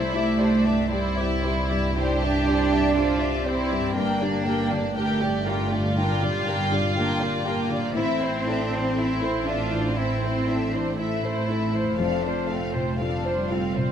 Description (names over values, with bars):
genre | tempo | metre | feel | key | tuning
cinematic, emotional film score for orchestra | 60 BPM | 4/4 | rubato | unclear | A4 = 440 Hz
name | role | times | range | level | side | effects
warm studio violin section | melody | 0.0-13.9 s | C5 to G5 | -32 LUFS | left 2 dB | none
rich studio violin section | second line | 0.0-13.9 s | C4 to G4 | -30 LUFS | left 2 dB | none
felt-muted upright piano | accompaniment | 0.0-13.9 s | C2 to E5 | -30 LUFS | left 3 dB | none
warm studio viola section | accompaniment | 0.0-13.9 s | C4 to D5 | -31 LUFS | right 1 dB | none
concert harp | arpeggios | 0.0-13.9 s | F2 to Bb5 | -36 LUFS | left 11 dB | none
dark studio cello section | bass | 0.0-13.9 s | G3 to D4 | -26 LUFS | right 3 dB | none
dark studio double bass section | bass | 0.0-13.9 s | F1 to C2 | -29 LUFS | right 2 dB | none
room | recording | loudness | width
light reverb | close, detailed microphones | -22 LUFS | side -8 dB against mid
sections
0.0-13.9 A section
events
none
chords
0.0 Cadd9; 4.0 Gm; 7.9 Am; 12.0 F